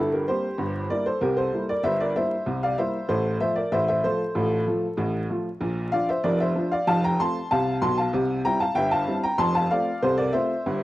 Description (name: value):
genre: ragtime piano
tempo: 95 BPM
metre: 2/4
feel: straight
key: F major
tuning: A4 = 440 Hz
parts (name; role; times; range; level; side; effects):
- clear upright piano; solo; 0.0-10.8 s; F1 to C6; -22 LUFS; equal; cassette tape
room: moderate spring reverb, RT60 1.7 s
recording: home recording on cassette, vinyl crackle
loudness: -22 LUFS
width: side -16 dB against mid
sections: 0.0-10.8 A section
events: none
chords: 0.0 C7; 0.6 C7/G; 3.1 F/A; 5.6 Bb; 6.9 F; 8.1 C; 9.4 F